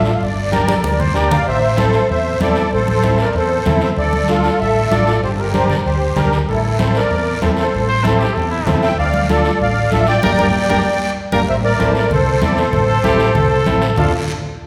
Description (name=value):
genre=latin, cumbia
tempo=192 BPM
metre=4/4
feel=straight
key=unclear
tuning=A4 = 441 Hz
part: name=musette accordion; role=melody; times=0.0-14.1 s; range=E4 to G5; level=-20 LUFS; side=equal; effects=none
part: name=overdriven combo organ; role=accompaniment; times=0.0-14.1 s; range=Bb3 to Bb4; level=-23 LUFS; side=equal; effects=none
part: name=fretless electric bass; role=bass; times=0.0-14.1 s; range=G1 to E2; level=-22 LUFS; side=equal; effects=none
part: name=guiro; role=percussion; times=0.0-14.0 s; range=none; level=-33 LUFS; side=equal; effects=none
part: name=clear trumpet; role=second line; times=0.5-1.4, 7.9-14.1 s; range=E4 to D5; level=-24 LUFS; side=equal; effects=none
part: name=congas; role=percussion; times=0.5-14.0 s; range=none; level=-23 LUFS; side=equal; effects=none
room=wet recital hall reverb, RT60 1.7 s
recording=recorded in a church or concert hall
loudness=-16 LUFS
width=mono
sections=0.0-1.5 A section; 1.5-11.5 A section; 11.5-14.0 B section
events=drum fill 0.7-1.5; band accent 10.2-11.5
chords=0.2 Gm; 1.5 Am; 4.0 Dmadd9; 5.2 Gm; 6.5 Am; 9.0 Dm; 10.2 Gm; 11.5 Am; 14.0 Dm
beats=| 0.21 0.53 0.84 1.16 | 1.47 1.78 2.10 2.41 | 2.72 3.04 3.35 3.66 | 3.98 4.29 4.60 4.92 | 5.23 5.54 5.86 6.17 | 6.48 6.79 7.11 7.42 | 7.73 8.04 8.36 8.67 | 8.98 9.29 9.61 9.92 | 10.23 10.54 10.85 11.17 | 11.48 11.79 12.10 12.41 | 12.73 13.04 13.35 13.66 | 13.97